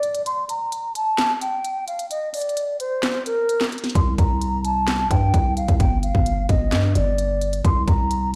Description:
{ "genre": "hip hop, trap", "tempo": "130 BPM", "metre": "4/4", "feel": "half-time", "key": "unclear", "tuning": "A4 = 437 Hz", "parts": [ { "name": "mellow hollow jazz flute", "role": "melody", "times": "0.0-8.3 s", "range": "Bb4 to C6", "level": "-26 LUFS", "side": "equal", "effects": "low-pass filter, tape echo" }, { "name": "trap drum kit", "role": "drums", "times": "0.0-8.2 s", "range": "handclaps, hi-hat, kick drum, snare drum", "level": "-24 LUFS", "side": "equal", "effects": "none" }, { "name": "growling 808-style bass", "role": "bass", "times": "4.0-8.4 s", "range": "G1 to G2", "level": "-24 LUFS", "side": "equal", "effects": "none" } ], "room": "light reverb", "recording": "played on a big sound system in a bare room, large studio reverb", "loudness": "-21 LUFS", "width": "mono", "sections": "0.0-8.4 A section", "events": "break 0.0-4.0", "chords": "0.0 N.C.; 4.0 C5; 5.8 G5; 7.6 N.C.", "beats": "| 0.26 0.72 1.18 1.65 | 2.11 2.57 3.03 3.49 | 3.95 4.42 4.88 5.34 | 5.80 6.26 6.72 7.18 | 7.64 8.11" }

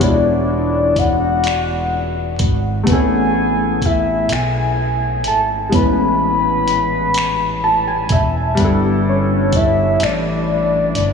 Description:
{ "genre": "slow six-eight R&B", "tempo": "42 BPM (dotted quarters)", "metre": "6/8", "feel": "straight", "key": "A major", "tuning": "A4 = 437 Hz", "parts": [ { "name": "soft octave-layered synth lead", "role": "melody", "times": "0.0-11.1 s", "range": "C#5 to B5", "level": "-18 LUFS", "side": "left 1 dB", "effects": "chorus, phaser, tape echo" }, { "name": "clear concert grand piano", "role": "accompaniment", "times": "0.0-11.1 s", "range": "G3 to A5", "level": "-19 LUFS", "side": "left 1 dB", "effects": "lush chorus" }, { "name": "mellow fretless electric bass", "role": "bass", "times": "0.0-11.1 s", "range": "E1 to B1", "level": "-21 LUFS", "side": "equal", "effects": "lush chorus" }, { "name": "dusty soul sampler-style drum kit", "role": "drums", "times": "0.0-11.1 s", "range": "finger snaps, hi-hat, kick drum", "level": "-22 LUFS", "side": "left 1 dB", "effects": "none" } ], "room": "wet cathedral reverb, RT60 6.2 s", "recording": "dreamy mix soaked in reverb, small room ambience", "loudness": "-14 LUFS", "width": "side -6 dB against mid", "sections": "0.0-11.1 A section", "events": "grand piano fill 7.2-8.6", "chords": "0.0 E9; 2.9 Amaj9; 8.6 G69", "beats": "| 0.01 1.44 | 2.87 4.30 | 5.73 7.16 | 8.58 10.01" }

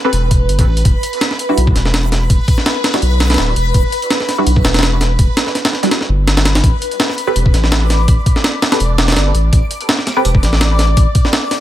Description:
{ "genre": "drum and bass, jungle", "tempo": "166 BPM", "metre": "4/4", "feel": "swing 54% on 16ths", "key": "unclear", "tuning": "A4 = 441 Hz", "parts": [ { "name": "filtered dub chord stab", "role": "stabs", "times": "0.0-10.2 s", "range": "G3 to B4", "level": "-20 LUFS", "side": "right 1 dB", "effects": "phaser, analog chorus, dub echo" }, { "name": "backwards swelling texture", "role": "texture", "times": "0.0-11.6 s", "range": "B4 to D6", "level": "-21 LUFS", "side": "equal", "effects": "built-in reverb" }, { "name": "saturated sub bass", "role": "bass", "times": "0.1-11.1 s", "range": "D1 to B1", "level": "-14 LUFS", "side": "equal", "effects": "none" }, { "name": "breakbeat sampler-style drum kit", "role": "drums", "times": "0.1-11.6 s", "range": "hi-hat, kick drum, snare drum", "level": "-14 LUFS", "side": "equal", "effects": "none" } ], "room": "little or no reverb", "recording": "none", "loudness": "-11 LUFS", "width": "side -13 dB against mid", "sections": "0.0-11.6 A section", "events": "kick drops out 5.9-6.6", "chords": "0.0 A7sus2; 0.9 Em; 6.6 A5", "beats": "0.13 0.49 | 0.85 1.21 1.57 1.94 | 2.30 2.66 3.02 3.38 | 3.74 4.10 4.47 4.83 | 5.19 5.55 5.91 6.27 | 6.63 7.00 7.36 7.72 | 8.08 8.44 8.80 9.16 | 9.53 9.89 10.25 10.61 | 10.97 11.33" }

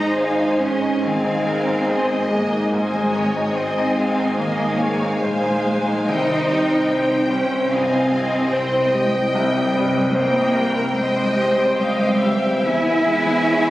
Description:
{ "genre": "cinematic", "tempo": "73 BPM", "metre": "4/4", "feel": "rubato", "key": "Ab major", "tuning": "A4 = 440 Hz", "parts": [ { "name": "clear symphonic violin section", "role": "melody", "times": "0.0-13.7 s", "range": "G5 to Bb5", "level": "-28 LUFS", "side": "left 1 dB", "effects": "none" }, { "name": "rich studio violin section", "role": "second line", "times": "0.0-13.7 s", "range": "C5 to G5", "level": "-29 LUFS", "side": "left 2 dB", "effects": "none" }, { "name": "bright concert grand piano", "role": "accompaniment", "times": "0.0-13.7 s", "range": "C2 to C5", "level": "-22 LUFS", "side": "left 1 dB", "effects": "none" }, { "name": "rich studio viola section", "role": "accompaniment", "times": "0.0-13.7 s", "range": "Ab4 to Fb5", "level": "-27 LUFS", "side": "right 1 dB", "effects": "none" }, { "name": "concert harp", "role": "arpeggios", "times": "0.0-13.7 s", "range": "Ab2 to C6", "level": "-26 LUFS", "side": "left 2 dB", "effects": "none" }, { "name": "warm studio cello section", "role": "bass", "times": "0.0-13.7 s", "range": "G3 to E4", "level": "-22 LUFS", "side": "right 1 dB", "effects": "none" }, { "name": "warm studio double bass section", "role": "bass", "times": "0.0-13.7 s", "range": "Ab1 to E2", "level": "-27 LUFS", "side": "right 2 dB", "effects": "none" } ], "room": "moderate scoring stage reverb, RT60 1.4 s", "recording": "recorded on a phone in the room, studio reverb, vinyl crackle", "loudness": "-17 LUFS", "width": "side -15 dB against mid", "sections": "0.0-13.7 A section", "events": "none", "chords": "0.0 Ab; 6.1 Cm; 12.6 E", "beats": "0.20 1.05 1.89 | 2.72 3.55 4.38 5.21 | 6.08 6.91 7.72 8.53 | 9.35 10.15 10.96 11.78 | 12.65 13.46" }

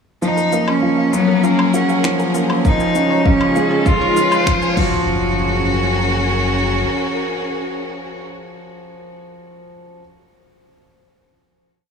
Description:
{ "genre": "piano and strings electronica", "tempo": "99 BPM", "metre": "4/4", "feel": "straight", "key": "F# major", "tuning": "A4 = 440 Hz", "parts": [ { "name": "bright cello", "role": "melody", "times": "0.2-8.3 s", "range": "A#3 to F#4", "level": "-19 LUFS", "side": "right 1 dB", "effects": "digital delay" }, { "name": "analog pluck", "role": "arpeggios", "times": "0.2-5.3 s", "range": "E#4 to G#5", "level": "-27 LUFS", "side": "right 4 dB", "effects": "none" }, { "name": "dark grand piano", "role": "riff", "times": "0.2-10.0 s", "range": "E#3 to C#5", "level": "-20 LUFS", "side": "left 2 dB", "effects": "digital delay" }, { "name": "round analog bass", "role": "bass", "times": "0.2-6.9 s", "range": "F#1", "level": "-27 LUFS", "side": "left 1 dB", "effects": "sidechain pumping, high-pass filter" }, { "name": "deep house drum kit", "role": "drums", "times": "0.2-4.9 s", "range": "crash cymbal, finger snaps, shaker, woodblock", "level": "-26 LUFS", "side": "left 4 dB", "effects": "overdrive" }, { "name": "riser and impact", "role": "sound effects", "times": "2.4-9.0 s", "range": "none", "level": "-28 LUFS", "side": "equal", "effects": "none" }, { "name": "warm symphonic string section", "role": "sustained chords", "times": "0.4-8.3 s", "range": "C#3 to A#4", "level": "-25 LUFS", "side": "right 1 dB", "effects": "sidechain pumping" }, { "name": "electronic kick drum", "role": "drums", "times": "2.6-4.9 s", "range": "none", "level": "-18 LUFS", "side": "equal", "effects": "overdrive" } ], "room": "moderate huge ambient reverb, RT60 4.9 s", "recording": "small room ambience", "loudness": "-14 LUFS", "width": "side -6 dB against mid", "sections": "0.2-5.1 build; 5.1-7.5 final chord", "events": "build-up 0.2-5.1; filter sweep on synth arpeggio sound 0.2-5.1; riser 2.4-5.1", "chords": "0.2 F#maj7; 2.6 C#/F#; 4.8 F#5; 5.1 F#maj7", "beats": "| 0.22 0.83 1.44 2.04 | 2.65 3.25 3.86 4.47 | 5.07 5.68 6.28 6.89" }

